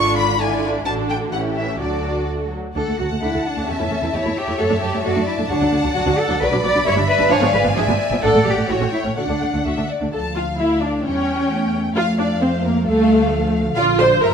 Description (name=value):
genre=quick classical-period movement for string orchestra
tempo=131 BPM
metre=2/4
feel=rubato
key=D major, D minor from 10.1 s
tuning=A4 = 440 Hz
part: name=warm symphonic violin section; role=melody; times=0.0-14.3 s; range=C#5 to C#6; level=-25 LUFS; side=left 4 dB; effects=none
part: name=warm studio violin section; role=second line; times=0.0-14.3 s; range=F4 to C6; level=-26 LUFS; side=left 2 dB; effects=none
part: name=warm symphonic viola section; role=accompaniment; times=0.0-14.3 s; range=D3 to C5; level=-21 LUFS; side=right 1 dB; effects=none
part: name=rich chamber cello section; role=bass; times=0.0-14.3 s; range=D3 to D5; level=-22 LUFS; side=right 1 dB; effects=none
part: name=warm symphonic double bass section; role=bass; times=0.0-14.3 s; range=G1 to F#2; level=-25 LUFS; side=right 2 dB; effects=none
room=moderate scoring stage reverb, RT60 2.0 s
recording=none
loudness=-16 LUFS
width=side -7 dB against mid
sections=0.0-2.8 A section; 2.8-10.1 B section; 10.1-14.3 B section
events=none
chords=0.0 E7b9/G#; 0.9 D/A; 1.3 A7; 1.8 D; 3.7 A7/E; 4.6 D/F#; 5.5 D; 6.4 Bm; 6.9 Em7/G; 7.3 G#dim7; 8.2 D/A; 8.7 A7; 9.2 D; 10.1 Dm; 11.1 A7/E; 12.0 Fadd11; 12.9 Dm; 13.8 Bb